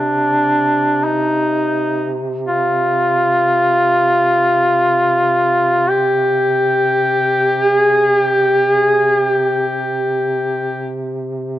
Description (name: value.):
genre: caucasian folk, Caucasian lament.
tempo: free time.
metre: none.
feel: none.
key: C minor.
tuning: A4 = 440 Hz.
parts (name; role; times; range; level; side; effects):
clear duduk; melody; 0.0-11.0 s; D4 to G4; -14 LUFS; equal; none.
mellow duduk; drone; 0.0-11.6 s; C3; -22 LUFS; right 2 dB; none.
room: light reverb.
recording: dark, warm production.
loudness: -13 LUFS.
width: side -13 dB against mid.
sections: 0.0-11.6 A section.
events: none.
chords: none.